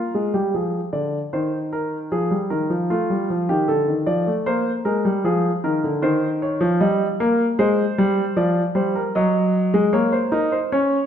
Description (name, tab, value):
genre	classical, baroque-style two-part invention for grand piano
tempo	77 BPM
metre	4/4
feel	straight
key	Ab major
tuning	A4 = 439 Hz
part	warm grand piano	solo	0.0-11.1 s	D3 to Eb5	-18 LUFS	equal	none
room	wet recital hall reverb, RT60 1.6 s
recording	none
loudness	-18 LUFS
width	side -8 dB against mid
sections	0.0-11.1 A section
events	none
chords	0.0 Bb (rootless); 1.3 Eb; 2.9 F7; 4.5 Bb; 6.0 Eb7; 7.6 Ab; 9.2 Ebm/Gb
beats	0.55 1.34 2.12 | 2.91 3.69 4.47 5.26 | 6.04 6.82 7.60 8.37 | 9.15 9.94 10.72